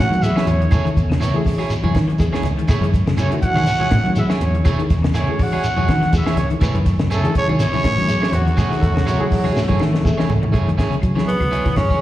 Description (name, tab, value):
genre	afrobeat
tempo	122 BPM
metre	4/4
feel	swing 56% on 16ths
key	F# dorian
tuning	A4 = 440 Hz
part	growling trumpet	melody	0.0-10.1 s	F#4 to F#5	-24 LUFS	equal	plate reverb, slapback echo
part	breathy trombone	second line	0.0-10.1 s	F#3 to F#4	-28 LUFS	right 3 dB	slapback echo, plate reverb
part	fingered electric bass	bass	0.0-12.0 s	C#2 to F#3	-19 LUFS	equal	none
part	compact cocktail drum kit	drums	0.0-12.0 s	hi-hat, kick drum, snare drum, toms	-21 LUFS	equal	none
part	semi-hollow electric guitar	arpeggios	0.1-12.0 s	C#3 to F#3	-24 LUFS	left 4 dB	ensemble chorus, slapback echo
part	barky reed electric piano	accompaniment	0.2-12.0 s	A3 to B4	-28 LUFS	left 1 dB	overdrive, fast tremolo, slapback echo
part	congas	percussion	0.2-11.9 s	none	-26 LUFS	right 1 dB	none
part	shekere	percussion	0.2-10.4 s	none	-27 LUFS	equal	slapback echo
part	electric guitar at the edge of break-up	stabs	0.4-12.0 s	A3 to C#5	-27 LUFS	right 5 dB	plate reverb, slapback echo
part	claves	percussion	0.4-11.9 s	none	-40 LUFS	left 3 dB	none
part	dark trombone section	second line	8.8-10.5 s	F#3 to A3	-25 LUFS	equal	slapback echo
part	edgy tenor saxophone	melody	11.3-12.0 s	B3 to C#4	-20 LUFS	equal	plate reverb, slapback echo
room	light reverb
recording	live gig heard through the venue's PA, recital hall reverb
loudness	-15 LUFS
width	side -14 dB against mid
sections	0.0-10.5 A section; 10.5-12.0 B section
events	drum fill 9.6-10.5; tenor saxophone solo 10.5-12.0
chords	0.0 F#m9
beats	0.22 | 0.71 1.21 1.70 2.19 | 2.68 3.17 3.67 4.16 | 4.65 5.14 5.63 6.12 | 6.61 7.11 7.60 8.09 | 8.58 9.07 9.56 10.05 | 10.54 11.03 11.52 12.01